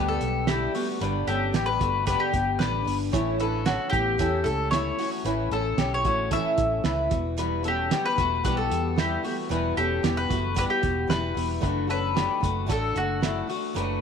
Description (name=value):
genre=jangly indie pop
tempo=113 BPM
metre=4/4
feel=straight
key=G lydian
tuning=A4 = 440 Hz
part: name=fingerpicked steel-string acoustic guitar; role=accompaniment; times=0.0-14.0 s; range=G2 to F#4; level=-32 LUFS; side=right 10 dB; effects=none
part: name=electric guitar at the edge of break-up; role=arpeggios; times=0.0-14.0 s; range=G3 to C#5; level=-30 LUFS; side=left 11 dB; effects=analog chorus, slapback echo
part: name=vintage muted fingered electric bass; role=bass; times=0.0-14.0 s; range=E1 to E2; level=-30 LUFS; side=equal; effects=none
part: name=mandolin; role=melody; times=0.1-13.5 s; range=F#4 to E5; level=-27 LUFS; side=left 2 dB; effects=slapback echo
part: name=cloth-damped thuddy drum kit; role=drums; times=0.2-13.9 s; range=hi-hat, kick drum, snare drum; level=-30 LUFS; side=right 4 dB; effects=none
room=moderate echo chamber reverb, RT60 1.9 s, small room ambience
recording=1960s-style stereo with parts hard left and right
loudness=-23 LUFS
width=side -7 dB against mid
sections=0.0-14.0 A section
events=none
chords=0.0 G; 3.1 A; 7.1 Emadd9; 11.6 D/F#